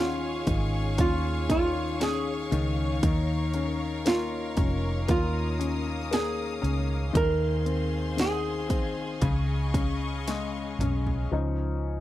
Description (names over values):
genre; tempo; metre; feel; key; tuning
pop ballad; 58 BPM; 4/4; straight; unclear; A4 = 441 Hz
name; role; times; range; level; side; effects
flamenco guitar; melody; 0.0-10.2 s; F4 to Bb4; -30 LUFS; right 2 dB; none
clear upright piano; accompaniment; 0.0-12.0 s; Db3 to Eb4; -31 LUFS; left 5 dB; none
clear studio string section; sustained chords; 0.0-11.3 s; Ab4 to Eb6; -36 LUFS; left 1 dB; none
vintage muted fingered electric bass; bass; 0.0-12.0 s; F1 to Eb2; -30 LUFS; right 1 dB; none
house drum kit; drums; 0.5-11.3 s; hi-hat, kick drum, snare drum, toms; -28 LUFS; right 1 dB; none
room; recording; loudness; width
little or no reverb; dry, close 1970s-style studio recording; -25 LUFS; side -14 dB against mid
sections
0.0-11.3 A section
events
drum fill 10.3-11.3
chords
0.0 Db; 3.0 Bbm; 7.2 Fm/Eb; 9.2 Dbadd9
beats
0.99 2.01 | 3.03 4.06 5.09 6.12 | 7.15 8.18 9.22 10.27 | 11.32